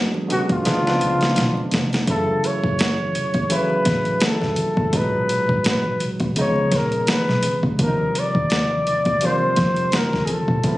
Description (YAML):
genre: R&B, neo-soul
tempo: 84 BPM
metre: 4/4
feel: swing 57% on 16ths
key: unclear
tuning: A4 = 444 Hz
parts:
  - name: barky tine electric piano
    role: accompaniment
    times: 0.0-10.8 s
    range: A#2 to E#4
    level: -24 LUFS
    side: right 1 dB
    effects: none
  - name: congas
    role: percussion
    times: 0.1-10.8 s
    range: none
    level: -32 LUFS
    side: left 2 dB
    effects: none
  - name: breathy flugelhorn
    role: melody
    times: 0.3-10.8 s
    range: E#4 to D5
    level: -22 LUFS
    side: left 1 dB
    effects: plate reverb, tape echo
  - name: boom bap sampler-style drum kit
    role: drums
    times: 0.3-10.8 s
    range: hi-hat, kick drum, snare drum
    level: -22 LUFS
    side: equal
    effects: overdrive
  - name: vintage muted fingered electric bass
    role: bass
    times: 0.7-10.8 s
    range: E#1 to E#2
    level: -25 LUFS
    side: equal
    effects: none
room: light reverb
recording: recorded on a phone in the room, studio reverb, nothing above 10.5 kHz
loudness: -18 LUFS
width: side -17 dB against mid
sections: 0.0-2.1 A section; 2.1-10.8 B section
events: drum fill 0.6-2.1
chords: 0.0 G#m7b5; 0.6 C#7b9; 2.1 F#m7; 4.9 G#m7; 6.4 C#9; 7.8 D#69